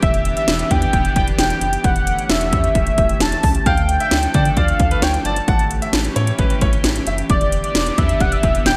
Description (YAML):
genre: synth-pop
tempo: 132 BPM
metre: 4/4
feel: straight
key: A mixolydian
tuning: A4 = 440 Hz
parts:
  - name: octave-doubled lead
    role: melody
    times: 0.0-8.8 s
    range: D5 to A5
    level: -22 LUFS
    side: equal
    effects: chorus, delay
  - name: chorused pulse-width pad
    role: sustained chords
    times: 0.0-8.8 s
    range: E3 to A4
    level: -28 LUFS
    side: equal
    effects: none
  - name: rubbery square bass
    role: bass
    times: 0.0-8.8 s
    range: E1 to D3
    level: -24 LUFS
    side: equal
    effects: none
  - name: house drum kit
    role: drums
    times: 0.0-8.8 s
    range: hi-hat, kick drum, snare drum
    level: -20 LUFS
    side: equal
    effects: overdrive, gated reverb
  - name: bright grand piano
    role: second line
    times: 3.7-7.1 s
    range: B4 to F#5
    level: -28 LUFS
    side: equal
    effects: delay
room: moderate lush hall reverb, RT60 1.6 s, digital ambience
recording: bright 1980s-style digital production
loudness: -17 LUFS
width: mono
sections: 0.0-8.8 A section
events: none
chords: 0.0 Em7; 1.8 A7/E; 3.7 Dm; 5.5 A7; 7.3 Em7